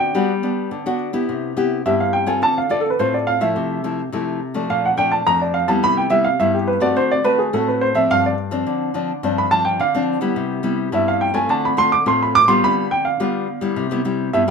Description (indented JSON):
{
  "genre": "samba",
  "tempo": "106 BPM",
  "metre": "4/4",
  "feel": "straight",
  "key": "C major",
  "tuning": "A4 = 441 Hz",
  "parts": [
    { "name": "warm baby grand piano", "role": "melody", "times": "0.0-14.5 s", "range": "G4 to D6", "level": "-17 LUFS", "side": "right 2 dB", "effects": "none" },
    { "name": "nylon-string guitar", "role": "accompaniment", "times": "0.0-14.5 s", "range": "F2 to A4", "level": "-20 LUFS", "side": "left 3 dB", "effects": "none" }
  ],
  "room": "moderate studio reverb, RT60 0.5 s",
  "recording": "minimal, uncompressed stereo recording",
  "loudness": "-16 LUFS",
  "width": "side -5 dB against mid",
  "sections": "0.0-1.3 A section; 1.3-14.5 B section",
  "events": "grand piano solo 1.3-14.5",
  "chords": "0.0 Gmaj7; 1.3 Cmaj7; 2.4 Dm7; 3.6 Fmaj7/C; 4.7 Bbmaj7; 5.8 Cmaj7; 7.0 D7; 8.1 G7sus4; 10.4 Cmaj7; 11.5 Dm7; 12.6 G7/D; 13.8 Cmaj7"
}